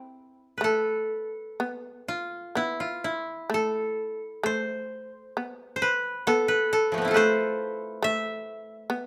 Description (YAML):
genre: japanese traditional, Japanese chamber music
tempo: 60-69 BPM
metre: 4/4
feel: rubato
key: E miyako bushi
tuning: A4 = 439 Hz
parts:
  - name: koto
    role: melody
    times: 0.0-9.1 s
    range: F3 to E5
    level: -28 LUFS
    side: equal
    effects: none
  - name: shamisen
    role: second line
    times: 0.0-9.1 s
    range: A3 to C4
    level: -34 LUFS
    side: equal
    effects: none
room: light reverb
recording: close, detailed microphones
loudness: -28 LUFS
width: mono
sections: 0.6-9.1 A section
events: none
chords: none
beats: | 0.62 1.58 2.56 3.51 | 4.45 5.37 6.26 7.15 | 8.03 8.90